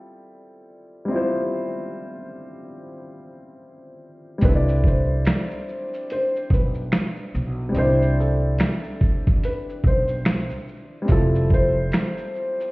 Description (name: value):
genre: lo-fi hip hop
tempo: 72 BPM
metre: 4/4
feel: swing 62% on 16ths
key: C major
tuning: A4 = 440 Hz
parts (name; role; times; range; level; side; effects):
- dark upright piano; accompaniment; 0.0-12.7 s; G3 to D5; -28 LUFS; equal; low-pass filter
- felt-muted upright piano; melody; 4.4-12.7 s; A4 to C5; -26 LUFS; equal; low-pass filter
- upright bass; bass; 4.4-11.9 s; F1 to C2; -22 LUFS; equal; none
- lo-fi sampler-style drum kit; drums; 4.4-12.7 s; finger snaps, hi-hat, kick drum, shaker, snare drum; -20 LUFS; equal; none
room: small room ambience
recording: heard muffled through a wall, stone room reverb, EQ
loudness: -19 LUFS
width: side -23 dB against mid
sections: 0.0-4.4 A section; 4.4-12.7 B section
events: none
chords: 0.0 Fmaj9; 4.4 Cmaj9; 11.1 Fmaj9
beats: 0.26 | 1.09 1.93 2.76 3.59 | 4.42 5.26 6.09 6.92 | 7.76 8.59 9.43 10.26 | 11.09 11.93